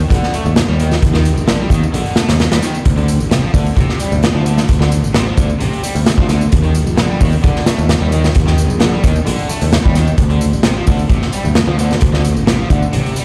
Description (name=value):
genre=breakbeat, breaks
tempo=131 BPM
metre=4/4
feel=straight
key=D phrygian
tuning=A4 = 443 Hz
part: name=picked electric bass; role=bass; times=0.0-13.0 s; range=A1 to Eb2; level=-18 LUFS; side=equal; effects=tube saturation
part: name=tambourine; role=drums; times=0.0-13.2 s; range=none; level=-35 LUFS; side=equal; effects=none
part: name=cranked stack guitar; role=riff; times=0.1-13.2 s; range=C3 to A3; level=-23 LUFS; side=equal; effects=overdrive, low-pass filter, tape echo
part: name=raw garage drum kit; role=drums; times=0.1-13.2 s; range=hi-hat, kick drum, snare drum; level=-17 LUFS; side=equal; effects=none
room=light reverb, small room ambience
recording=played on a big sound system in a bare room, large studio reverb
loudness=-14 LUFS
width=mono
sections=0.0-13.2 A section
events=kick drops out 1.9-2.9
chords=0.0 Eb5; 2.9 D7(no3); 6.5 Eb5; 10.2 D7(no3)